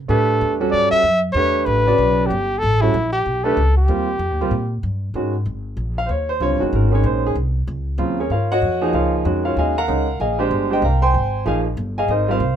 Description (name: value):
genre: modal jazz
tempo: 190 BPM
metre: 4/4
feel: swing 62% on 8ths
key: Ab mixolydian from 5.1 s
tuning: A4 = 435 Hz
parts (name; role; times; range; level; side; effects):
- upright bass; bass; 0.0-12.6 s; Gb1 to A#2; -21 LUFS; equal; none
- mellow trumpet; melody; 0.1-4.8 s; E4 to E5; -18 LUFS; left 1 dB; none
- clear concert grand piano; accompaniment; 0.1-12.6 s; C#3 to C6; -20 LUFS; right 2 dB; none
room: light reverb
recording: minimal, uncompressed stereo recording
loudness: -16 LUFS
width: side -9 dB against mid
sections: 0.0-5.1 A section; 5.1-12.6 B section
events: none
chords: 0.1 A9sus4; 3.9 D#add9; 5.1 Ab13sus4; 10.2 Bb13sus4